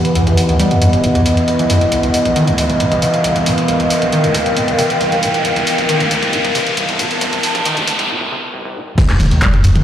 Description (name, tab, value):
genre	driving peak-time techno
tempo	136 BPM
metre	4/4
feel	straight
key	unclear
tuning	A4 = 440 Hz
part	analog drone	drone	0.0-8.1 s	E3 to B3	-19 LUFS	equal	chorus, sidechain pumping
part	punchy analog drum machine	drums	0.0-9.8 s	crash cymbal, handclaps, hi-hat, ride cymbal, toms	-21 LUFS	right 1 dB	high-pass filter on hats, high-pass filter on cymbals, high-pass filter on snare, high-pass filter on toms, high-pass filter on room
part	riser and impact	sound effects	0.0-9.8 s	none	-20 LUFS	equal	none
part	warbly tape-like pad	texture	0.0-9.8 s	G4 to A5	-18 LUFS	equal	chorus, built-in reverb, sidechain pumping
part	overdriven acid bass	riff	0.2-9.8 s	E1 to G3	-18 LUFS	equal	wide subtle chorus, sidechain pumping
part	electronic kick drum	drums	9.0-9.5 s	none	-14 LUFS	equal	none
part	warm sub bass	bass	9.1-9.8 s	E1	-15 LUFS	equal	sidechain pumping, low-pass filter
room	moderate lush hall reverb, RT60 1.9 s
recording	played on a big sound system in a bare room, stone room reverb, high-pass filter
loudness	-12 LUFS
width	side -10 dB against mid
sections	0.0-9.0 A section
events	build-up 0.0-9.0; riser 0.0-8.1; filter sweep on acid bass 0.0-9.0; filter sweep 0.0-9.0; break 8.1-9.0; impact 9.0-9.8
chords	0.0 Em; 1.9 Cm; 9.0 Em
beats	| 0.15 0.60 1.04 1.48 | 1.92 2.36 2.80 3.24 | 3.68 4.12 4.57 5.01 | 5.45 5.89 6.33 6.77 | 7.21 7.65 8.10 8.54 | 8.98 9.42